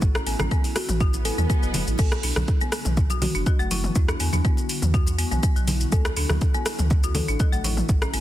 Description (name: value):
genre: afro house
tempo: 122 BPM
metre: 4/4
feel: straight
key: unclear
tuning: A4 = 438 Hz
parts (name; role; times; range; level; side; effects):
- ethereal airy pad; sustained chords; 0.0-8.2 s; C#3 to C#5; -35 LUFS; equal; ensemble chorus, built-in reverb, sidechain pumping
- warm sub bass; bass; 0.0-8.2 s; E1 to E2; -25 LUFS; equal; sidechain pumping
- deep house drum kit; drums; 0.0-8.2 s; crash cymbal, hi-hat, rim click, shaker, toms; -28 LUFS; left 1 dB; overdrive
- electronic kick drum; drums; 0.0-8.0 s; none; -21 LUFS; equal; overdrive
- congas; percussion; 0.0-8.2 s; none; -32 LUFS; left 1 dB; none
- folk marimba with hard mallets; arpeggios; 0.1-8.2 s; F#3 to F#4; -32 LUFS; left 2 dB; sidechain pumping, tape echo
- kalimba; melody; 0.8-7.4 s; E4 to A4; -36 LUFS; left 2 dB; tape echo
- swell; sound effects; 1.2-2.0 s; none; -35 LUFS; right 1 dB; none
room: little or no reverb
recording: dense, heavily limited modern master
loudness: -20 LUFS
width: side -14 dB against mid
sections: 0.0-8.2 A section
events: swell 1.2-2.0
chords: 0.0 A7; 2.0 Bm7; 4.0 Em9; 5.9 Dmaj9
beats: | 0.02 0.51 1.01 1.50 | 1.99 2.48 2.97 3.46 | 3.96 4.45 4.94 5.43 | 5.92 6.42 6.91 7.40 | 7.89